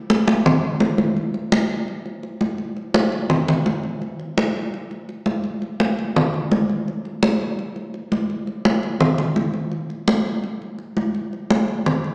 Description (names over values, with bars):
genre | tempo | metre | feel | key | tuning
jazz | 168 BPM | 4/4 | straight | none | none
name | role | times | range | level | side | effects
congas | percussion | 0.1-12.1 s | none | -22 LUFS | equal | none
room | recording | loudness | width
wet concert hall reverb, RT60 1.7 s | recorded in a church or concert hall, small speaker sound | -22 LUFS | mono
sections
0.0-1.2 A section; 1.2-12.1 B section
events
none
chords
none